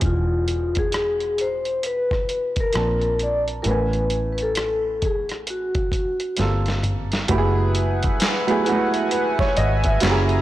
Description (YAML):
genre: R&B, neo-soul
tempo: 66 BPM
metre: 4/4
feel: swing 62% on 16ths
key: unclear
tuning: A4 = 440 Hz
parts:
  - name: warm upright piano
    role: accompaniment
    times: 0.0-10.4 s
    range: B2 to A5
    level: -24 LUFS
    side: right 3 dB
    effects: none
  - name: vintage muted fingered electric bass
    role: bass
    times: 0.0-10.4 s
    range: E1 to A#1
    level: -23 LUFS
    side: equal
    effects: transformer saturation
  - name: dusty soul sampler-style drum kit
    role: drums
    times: 0.0-10.4 s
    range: handclaps, hi-hat, kick drum, rim click, snare drum, toms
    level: -25 LUFS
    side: equal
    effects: overdrive, soft clipping on snare
  - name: vibraphone with medium mallets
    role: melody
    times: 0.1-6.4 s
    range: F4 to D5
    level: -23 LUFS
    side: left 2 dB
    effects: none
  - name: chorused pulse-width pad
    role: sustained chords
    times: 7.3-10.4 s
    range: B4 to A#5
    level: -25 LUFS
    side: left 1 dB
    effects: none
room: light reverb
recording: blown-out, overdriven recording, overdrive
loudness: -19 LUFS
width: side -14 dB against mid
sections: 0.0-7.3 A section; 7.3-10.4 B section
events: drum fill 6.4-7.3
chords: 0.0 E7b9; 2.7 A#maj9; 3.7 Amaj9; 6.4 Gm11; 7.3 F#m11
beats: | 0.02 0.93 1.84 2.75 | 3.65 4.56 5.47 6.38 | 7.29 8.20 9.11 10.02